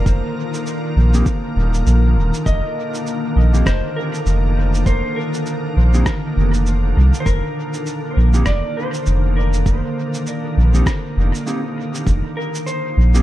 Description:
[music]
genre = ambient dub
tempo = 100 BPM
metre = 4/4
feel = swing 59% on 16ths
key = unclear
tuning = A4 = 441 Hz
[part]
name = clean lap steel guitar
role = melody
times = 0.0-13.2 s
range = Bb4 to Eb5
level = -28 LUFS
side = equal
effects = dub echo
[part]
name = soft additive organ-like pad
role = sustained chords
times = 0.0-13.2 s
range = D3 to Bb4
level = -23 LUFS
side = equal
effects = ensemble chorus, built-in reverb
[part]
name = soft dub sub bass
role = bass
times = 0.0-13.2 s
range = Eb1 to C2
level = -14 LUFS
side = equal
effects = tube saturation
[part]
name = electronic cabasa and rim click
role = drums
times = 0.1-13.2 s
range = none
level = -29 LUFS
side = right 1 dB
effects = overdrive, dub echo
[part]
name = electronic kick drum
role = drums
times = 0.1-12.2 s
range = none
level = -20 LUFS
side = equal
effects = none
[part]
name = mellow electric guitar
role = stabs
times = 1.1-13.2 s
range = Bb3 to G4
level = -28 LUFS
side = equal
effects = dub echo
[sound]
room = digital ambience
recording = dark, warm production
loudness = -16 LUFS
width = side -14 dB against mid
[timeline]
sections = 0.0-12.1 A section; 12.1-13.2 B section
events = none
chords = 0.0 F7sus4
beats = | 0.06 0.66 1.26 1.86 | 2.46 3.06 3.66 4.26 | 4.86 5.46 6.06 6.66 | 7.26 7.86 8.46 9.06 | 9.66 10.26 10.86 11.46 | 12.06 12.66

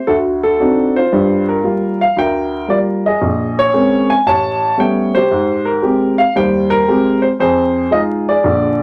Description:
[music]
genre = solo jazz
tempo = 115 BPM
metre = 4/4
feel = swing 68% on 8ths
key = unclear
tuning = A4 = 440 Hz
[part]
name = warm upright piano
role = solo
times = 0.0-8.8 s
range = A1 to A5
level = -14 LUFS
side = equal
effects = none
[sound]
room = moderate studio reverb, RT60 0.5 s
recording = vinyl crackle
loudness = -14 LUFS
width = mono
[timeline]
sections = 0.0-8.8 A section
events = none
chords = 0.1 D7b9; 1.1 Gm7; 3.2 Bbm9; 4.2 A9; 5.3 Abmaj7; 7.4 Fm7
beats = 0.07 0.59 | 1.11 1.64 2.16 2.68 | 3.20 3.73 4.25 4.77 | 5.29 5.82 6.34 6.87 | 7.39 7.91 8.44

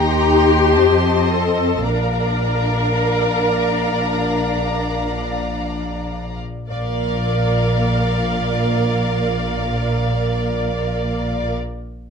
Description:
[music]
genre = classical, slow romantic movement for string orchestra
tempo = free time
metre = none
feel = none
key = Bb major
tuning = A4 = 443 Hz
[part]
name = rich symphonic violin section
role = melody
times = 0.0-11.5 s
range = F5 to C6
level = -28 LUFS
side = equal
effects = none
[part]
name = warm symphonic violin section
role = second line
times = 0.0-11.5 s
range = D5 to Bb5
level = -25 LUFS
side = left 2 dB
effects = none
[part]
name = rich studio viola section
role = accompaniment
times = 0.0-11.5 s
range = G4 to Bb4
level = -20 LUFS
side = left 2 dB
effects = none
[part]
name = rich studio cello section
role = bass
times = 0.0-11.5 s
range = Bb2 to Eb4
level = -26 LUFS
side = right 1 dB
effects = none
[part]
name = rich symphonic double bass section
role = bass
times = 0.0-11.5 s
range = Bb1 to F2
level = -21 LUFS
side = right 1 dB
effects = none
[sound]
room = light reverb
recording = dark, warm production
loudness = -16 LUFS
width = side -6 dB against mid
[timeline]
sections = 0.0-6.7 A section; 6.7-11.5 B section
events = slowing down 0.0-6.7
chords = 0.0 Cm7/Eb; 0.8 F7; 1.8 Bb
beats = free time

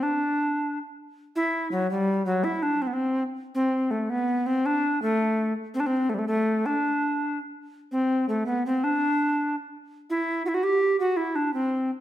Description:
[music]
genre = medieval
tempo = 110 BPM (dotted quarters)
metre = 6/8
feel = straight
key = D mixolydian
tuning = A4 = 439 Hz
[part]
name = bass recorder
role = solo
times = 0.0-11.9 s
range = F#3 to G4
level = -23 LUFS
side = equal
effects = none
[sound]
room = wet recital hall reverb, RT60 1.2 s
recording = minimal, uncompressed stereo recording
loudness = -23 LUFS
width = side -13 dB against mid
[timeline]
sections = 0.0-7.7 A section; 7.7-12.0 A section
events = speeding up 0.0-12.0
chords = none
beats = | 0.06 0.61 | 1.17 1.72 | 2.27 2.83 | 3.38 3.93 | 4.47 5.02 | 5.57 6.12 | 6.66 7.20 | 7.75 8.29 | 8.83 9.37 | 9.91 10.45 | 10.98 11.52

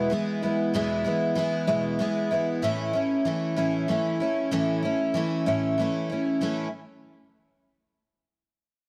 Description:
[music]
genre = rock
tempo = 63 BPM (dotted quarters)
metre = 6/8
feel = straight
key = A major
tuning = A4 = 440 Hz
[part]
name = picked twelve-string acoustic guitar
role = solo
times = 0.0-6.7 s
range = E2 to E4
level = -26 LUFS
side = equal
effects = slapback echo
[sound]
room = light reverb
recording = none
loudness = -26 LUFS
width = mono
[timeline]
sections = 0.0-6.4 A section; 6.4-8.3 B section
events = none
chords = 0.0 E; 2.6 A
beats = | 0.75 1.69 | 2.64 3.59 | 4.53 5.48 | 6.42

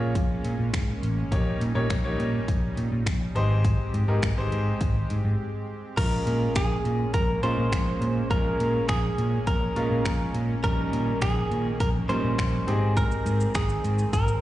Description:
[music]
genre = dance-pop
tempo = 103 BPM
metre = 4/4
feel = straight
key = Bb dorian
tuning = A4 = 440 Hz
[part]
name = clear grand piano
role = accompaniment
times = 0.0-13.6 s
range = G3 to Db5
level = -31 LUFS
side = left 1 dB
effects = sidechain pumping, slapback echo
[part]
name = soft supersaw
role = sustained chords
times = 0.0-14.4 s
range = Eb3 to G4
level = -36 LUFS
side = right 2 dB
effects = sidechain pumping
[part]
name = picked electric bass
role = bass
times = 0.0-14.3 s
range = Ab1 to Bb2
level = -26 LUFS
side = equal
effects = sidechain pumping
[part]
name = pop drum kit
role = drums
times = 0.2-14.4 s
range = crash cymbal, finger snaps, hi-hat, kick drum, shaker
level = -27 LUFS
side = equal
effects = none
[part]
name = direct-recorded clean electric guitar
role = melody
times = 6.0-14.4 s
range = Ab4 to C5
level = -29 LUFS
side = right 1 dB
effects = tape echo, slapback echo
[sound]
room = light reverb, digital ambience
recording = live gig heard through the venue's PA, recital hall reverb, nothing above 10.8 kHz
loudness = -23 LUFS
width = side -14 dB against mid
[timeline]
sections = 0.0-6.0 A section; 6.0-14.4 B section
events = break 5.4-6.0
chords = 0.0 Bbm7; 1.3 Eb7/Bb; 3.4 Abmaj7; 6.0 Bbm7; 10.6 Eb7/Bb; 12.7 Abmaj7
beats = 0.15 0.73 | 1.32 1.90 2.48 3.06 | 3.65 4.23 4.81 5.39 | 5.98 6.56 7.14 7.72 | 8.31 8.89 9.47 10.05 | 10.64 11.22 11.80 12.39 | 12.97 13.55 14.13

